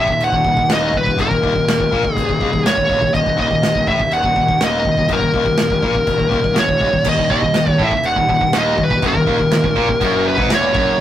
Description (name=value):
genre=heavy metal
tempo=122 BPM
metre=4/4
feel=straight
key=Eb phrygian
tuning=A4 = 440 Hz
part: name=high-gain lead guitar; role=melody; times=0.0-11.0 s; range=Bb4 to Gb5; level=-17 LUFS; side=equal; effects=distortion
part: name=distorted electric guitar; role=riff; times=0.0-11.0 s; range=Eb2 to Bb2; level=-21 LUFS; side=left 3 dB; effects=overdrive
part: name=fuzz picked electric bass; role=bass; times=0.0-11.0 s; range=Eb1 to Bb1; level=-23 LUFS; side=equal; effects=overdrive
part: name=modern studio drum kit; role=drums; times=0.1-10.9 s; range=china cymbal, crash cymbal, kick drum, snare drum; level=-21 LUFS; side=equal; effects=none
part: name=tight distorted guitar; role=riff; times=7.1-11.0 s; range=Eb2 to Bb2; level=-21 LUFS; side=right 4 dB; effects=distortion
room=moderate booth ambience, RT60 0.3 s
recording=rough rehearsal-room recording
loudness=-13 LUFS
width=side -11 dB against mid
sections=0.0-11.0 A section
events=none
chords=0.0 Ebm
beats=0.20 0.69 | 1.18 1.67 2.16 2.65 | 3.14 3.63 4.12 4.61 | 5.10 5.59 6.08 6.57 | 7.06 7.55 8.05 8.54 | 9.03 9.52 10.01 10.50 | 11.00